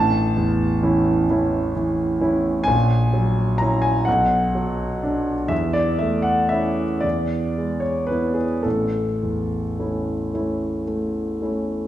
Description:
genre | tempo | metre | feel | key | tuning
classical, romantic nocturne for solo piano | 35-44 BPM (dotted quarters) | 12/8 | rubato | A major | A4 = 439 Hz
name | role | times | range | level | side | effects
warm grand piano | solo | 0.0-11.9 s | A1 to A#5 | -19 LUFS | equal | none
room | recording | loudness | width
wet recital hall reverb, RT60 1.6 s | heard from further back in the room | -19 LUFS | side -12 dB against mid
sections
0.0-11.9 A section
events
none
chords
0.0 A; 2.7 F#7/A#; 4.1 Bm; 5.5 A/E; 7.0 E7; 8.6 A

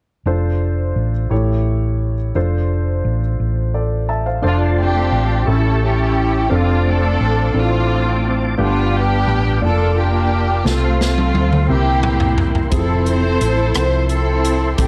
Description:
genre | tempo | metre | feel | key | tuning
slow gospel | 58 BPM (dotted quarters) | 6/8 | straight | F major | A4 = 440 Hz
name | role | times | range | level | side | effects
warm concert grand piano | accompaniment | 0.3-14.9 s | G2 to A5 | -25 LUFS | equal | none
hollow-body short-scale fingered electric bass | bass | 0.3-14.9 s | F1 to D2 | -20 LUFS | equal | none
tonewheel organ | sustained chords | 4.4-14.9 s | Bb3 to D6 | -28 LUFS | equal | slow rotary speaker, chorus vibrato
warm studio string section | melody | 4.5-14.9 s | A3 to C5 | -22 LUFS | equal | none
swinging big-band drum kit | drums | 10.7-14.9 s | hi-hat, kick drum, rim click, snare drum, toms | -23 LUFS | equal | none
room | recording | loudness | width
little or no reverb | dark, warm production | -17 LUFS | mono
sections
0.3-4.4 A section; 4.4-14.9 B section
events
drum fill 10.7-12.7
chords
0.3 F6; 1.3 A7; 2.4 Dm7/F; 5.5 A7; 6.5 Dm7/F; 8.6 G7; 9.6 Bb/F; 10.7 F/C; 11.7 C7; 12.7 Fmaj7

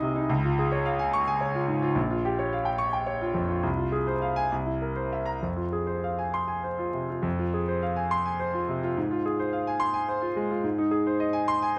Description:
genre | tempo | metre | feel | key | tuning
classical, virtuoso piano study | 64-73 BPM (dotted quarters) | 6/8 | rubato | F minor | A4 = 440 Hz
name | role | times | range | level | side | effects
clear concert grand piano | solo | 0.0-11.8 s | Bb1 to Eb6 | -28 LUFS | equal | none
room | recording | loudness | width
light reverb | close, detailed microphones, vinyl crackle | -28 LUFS | mono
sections
0.0-7.2 A section; 7.2-11.8 A section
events
none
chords
0.3 Db; 2.0 Gm7b5/Bb; 3.6 Fm/C; 4.5 C7; 5.4 Fm; 9.0 Fm/Ab; 10.6 Ab

